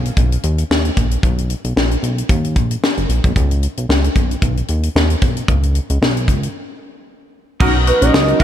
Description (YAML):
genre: early-eighties boogie funk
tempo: 113 BPM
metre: 4/4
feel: swing 56% on 16ths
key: unclear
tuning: A4 = 440 Hz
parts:
  - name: chorused synth bass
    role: bass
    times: 0.0-8.4 s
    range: F#1 to D#2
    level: -17 LUFS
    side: equal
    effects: none
  - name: tight funk drum kit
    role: drums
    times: 0.1-8.4 s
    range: crash cymbal, hi-hat, kick drum, snare drum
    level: -17 LUFS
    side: left 1 dB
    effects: none
  - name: mellow synth brass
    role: accompaniment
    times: 7.6-8.4 s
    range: C#4 to A#4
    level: -18 LUFS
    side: left 1 dB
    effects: chorus, slapback echo
  - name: brassy analog pad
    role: sustained chords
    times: 7.6-8.4 s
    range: F#3 to D#4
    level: -28 LUFS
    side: right 1 dB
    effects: none
  - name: twangy electric guitar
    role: riff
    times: 7.6-8.4 s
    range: D#4 to A#4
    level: -21 LUFS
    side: right 5 dB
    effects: analog chorus, slapback echo
  - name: gliding portamento lead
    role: melody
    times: 7.9-8.4 s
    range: B4 to F#5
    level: -18 LUFS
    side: right 2 dB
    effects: chorus
room: light reverb, small room reverb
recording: none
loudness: -14 LUFS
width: side -10 dB against mid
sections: 0.0-7.6 A section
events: break 6.5-7.6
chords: 0.0 Bmaj7; 3.4 C#sus2; 7.6 Bmaj7